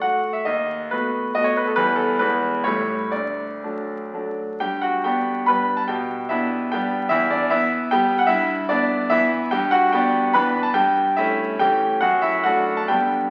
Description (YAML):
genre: classical, romantic triple-time dance for piano with dotted rhythms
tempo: 114-160 BPM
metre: 3/4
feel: rubato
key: D major, G major from 4.6 s, D major from 9.5 s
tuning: A4 = 436 Hz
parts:
  - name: bright concert grand piano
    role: solo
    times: 0.0-13.3 s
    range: D2 to B5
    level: -21 LUFS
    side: equal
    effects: none
room: wet recital hall reverb, RT60 1.5 s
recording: very old 78 rpm record, vinyl crackle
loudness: -21 LUFS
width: mono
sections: 0.0-4.6 A section; 4.6-13.3 B section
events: none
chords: 0.5 B7/D#; 1.8 Em; 2.2 E; 2.7 A7; 3.1 D; 4.6 G; 5.9 G/B; 7.1 Em; 8.3 Em/G; 9.5 Em7/G; 10.8 A7/G; 12.0 D/F#